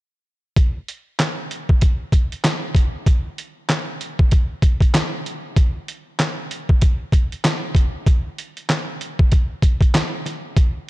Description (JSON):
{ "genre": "hip hop", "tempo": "96 BPM", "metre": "4/4", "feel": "swing 58% on 16ths", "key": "none", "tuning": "none", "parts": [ { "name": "trip hop sampler-style drum kit", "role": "drums", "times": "0.6-10.7 s", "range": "handclaps, hi-hat, kick drum, snare drum", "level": "-17 LUFS", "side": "equal", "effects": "vintage 12-bit sampler grit" } ], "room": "digital ambience", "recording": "dark, warm production", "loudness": "-17 LUFS", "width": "side -19 dB against mid", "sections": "0.6-10.6 A section", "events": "none", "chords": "none" }